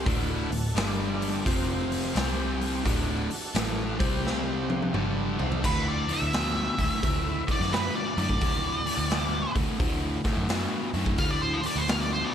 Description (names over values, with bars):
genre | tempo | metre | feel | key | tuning
blues rock power trio and southern rock | 86 BPM | 4/4 | swing 65% on 8ths | D mixolydian | A4 = 440 Hz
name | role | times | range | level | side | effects
overdriven tonewheel organ | sustained chords | 0.0-5.6 s | C4 to D5 | -38 LUFS | right 5 dB | chorus vibrato, wide subtle chorus
overdriven electric guitar | riff | 0.0-12.3 s | D2 to C4 | -30 LUFS | left 1 dB | none
vintage muted picked electric bass | bass | 0.0-12.2 s | D1 to F#2 | -32 LUFS | equal | none
raw garage drum kit | drums | 0.1-12.1 s | crash cymbal, hi-hat, kick drum, snare drum, toms | -29 LUFS | equal | none
octave-fuzz lead guitar | melody | 5.7-12.3 s | B4 to F5 | -29 LUFS | equal | distortion, slapback echo
room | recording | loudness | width
light reverb, small room ambience | lossy compression artefacts | -25 LUFS | side -9 dB against mid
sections
0.0-5.6 A section; 5.6-12.3 B section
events
drum fill 4.2-5.6; lead electric guitar solo 5.6-12.3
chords
0.1 D; 0.8 G5; 1.5 F5; 2.2 C5; 2.9 D; 3.9 C5; 4.9 D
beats
| 0.06 0.76 1.46 2.15 | 2.85 3.55 4.24 4.94 | 5.63 6.33 7.02 7.72 | 8.41 9.11 9.80 10.50 | 11.19 11.88